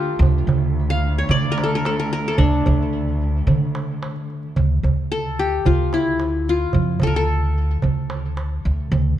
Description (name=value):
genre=Arabic maqam ensemble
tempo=110 BPM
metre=4/4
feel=straight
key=D minor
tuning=A4 = 440 Hz
part: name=qanun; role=melody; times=0.0-8.3 s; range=D4 to F5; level=-22 LUFS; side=left 3 dB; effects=tape echo
part: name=upright bass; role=bass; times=0.0-9.2 s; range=D2 to D3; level=-21 LUFS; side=equal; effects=none
part: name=muted cello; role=drone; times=0.0-4.6 s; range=D2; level=-30 LUFS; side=right 2 dB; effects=none
part: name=darbuka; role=percussion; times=0.2-9.1 s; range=none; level=-23 LUFS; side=right 5 dB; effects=none
room=light reverb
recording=dark, warm production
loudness=-18 LUFS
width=side -11 dB against mid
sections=0.0-4.6 A section; 4.6-9.2 B section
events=none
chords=none